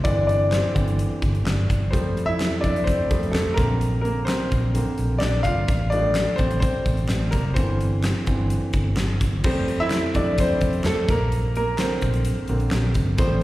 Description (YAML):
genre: piano-driven pop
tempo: 128 BPM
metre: 4/4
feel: straight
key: F major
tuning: A4 = 440 Hz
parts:
  - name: warm concert grand piano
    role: accompaniment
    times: 0.0-13.4 s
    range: D3 to F5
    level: -24 LUFS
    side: equal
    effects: slapback echo
  - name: vintage muted fingered electric bass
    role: bass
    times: 0.0-13.4 s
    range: F1 to F2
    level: -23 LUFS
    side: equal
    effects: none
  - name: huge arena drum kit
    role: drums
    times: 0.0-13.3 s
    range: crash cymbal, handclaps, hi-hat, kick drum, snare drum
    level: -25 LUFS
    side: equal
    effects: none
room: light reverb, studio ambience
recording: live gig heard through the venue's PA, recital hall reverb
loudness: -20 LUFS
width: side -16 dB against mid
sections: 0.0-9.4 A section; 9.4-13.4 A section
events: grand piano solo 0.0-9.4, 9.4-13.4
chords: 0.1 Cadd9/G; 1.9 Fadd9; 3.6 Bbadd9; 5.7 Fadd9/A; 7.6 Cadd9/G; 9.4 Fadd9; 11.1 Bbadd9